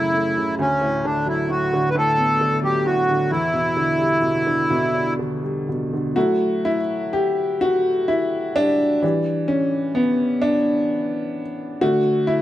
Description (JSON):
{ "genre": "celtic folk, Celtic slow air", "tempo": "41-45 BPM (dotted quarters)", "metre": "6/8", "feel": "rubato", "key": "E dorian", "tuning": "A4 = 440 Hz", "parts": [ { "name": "accordion", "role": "melody", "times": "0.0-5.1 s", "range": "C#4 to B4", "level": "-19 LUFS", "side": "equal", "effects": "none" }, { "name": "clear upright piano", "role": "accompaniment", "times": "0.0-12.4 s", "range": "D2 to G4", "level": "-20 LUFS", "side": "equal", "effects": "none" } ], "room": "light reverb", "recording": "close, detailed microphones", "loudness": "-18 LUFS", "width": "side -13 dB against mid", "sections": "0.0-6.2 A section; 6.2-12.4 B section", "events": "upright piano solo 6.2-12.4", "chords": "0.0 F#m7; 0.6 D6; 3.3 Em7; 6.2 F#m7; 9.0 Em7; 11.8 D" }